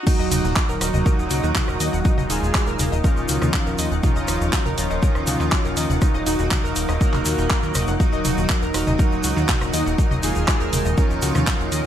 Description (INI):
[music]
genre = melodic techno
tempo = 121 BPM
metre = 4/4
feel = straight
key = Eb minor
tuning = A4 = 440 Hz
[part]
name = analog synth brass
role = melody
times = 0.0-11.9 s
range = Db4 to Bb4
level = -27 LUFS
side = equal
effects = chorus, sidechain pumping, ping-pong delay
[part]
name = airy dreamy lead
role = second line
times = 0.1-11.9 s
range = F3 to Bb3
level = -31 LUFS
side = equal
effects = chorus, sidechain pumping, digital delay
[part]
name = analog pluck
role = arpeggios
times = 0.1-11.8 s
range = Eb4 to Gb5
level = -30 LUFS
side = equal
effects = chorus, sidechain pumping, digital delay
[part]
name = brassy analog pad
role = stabs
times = 0.1-11.9 s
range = Bb2 to Eb4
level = -29 LUFS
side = right 2 dB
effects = chorus, sidechain pumping, digital delay
[part]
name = electronic kick drum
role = drums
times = 0.1-11.6 s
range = none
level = -20 LUFS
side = equal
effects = none
[part]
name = house drum kit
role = drums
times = 0.1-11.8 s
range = crash cymbal, handclaps, hi-hat, rim click, toms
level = -25 LUFS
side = equal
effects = none
[part]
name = egg shaker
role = percussion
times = 0.1-11.8 s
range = none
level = -32 LUFS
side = left 3 dB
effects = none
[part]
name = granular cloud pad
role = texture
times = 1.3-11.9 s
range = Eb4 to Ab5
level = -32 LUFS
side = right 1 dB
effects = built-in reverb, sidechain pumping
[part]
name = plucky analog bass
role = bass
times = 0.2-11.8 s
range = Eb1 to Eb2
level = -24 LUFS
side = equal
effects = sidechain pumping, high-pass filter
[sound]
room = light reverb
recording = bright 1980s-style digital production, high-pass filter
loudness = -18 LUFS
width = side -10 dB against mid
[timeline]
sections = 0.1-11.9 A section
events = drop 0.1-11.9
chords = 0.1 Ebm